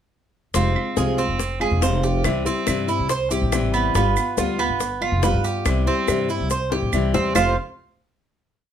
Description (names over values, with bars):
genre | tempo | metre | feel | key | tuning
latin, Cuban son and guajira | 141 BPM | 4/4 | straight | F harmonic minor | A4 = 440 Hz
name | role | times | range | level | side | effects
flamenco guitar | accompaniment | 0.5-7.5 s | F2 to F4 | -24 LUFS | left 2 dB | none
Cuban tres | arpeggios | 0.5-7.6 s | B3 to F5 | -24 LUFS | right 5 dB | none
upright bass | bass | 0.5-7.6 s | E1 to G2 | -24 LUFS | equal | none
bongos | percussion | 0.5-7.5 s | none | -28 LUFS | left 9 dB | none
maracas | percussion | 0.5-7.5 s | none | -34 LUFS | right 7 dB | none
claves | percussion | 0.8-7.5 s | none | -29 LUFS | right 5 dB | none
room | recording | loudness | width
moderate studio reverb, RT60 0.6 s | none | -19 LUFS | side -9 dB against mid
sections
0.5-7.4 verse; 7.4-8.7 final chord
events
drum fill 6.7-7.4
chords
0.5 Fm; 2.2 C; 4.0 G7; 5.7 C; 7.4 F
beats
| 0.54 0.97 1.39 1.82 | 2.25 2.67 3.10 3.52 | 3.95 4.38 4.80 5.23 | 5.66 6.08 6.51 6.93 | 7.36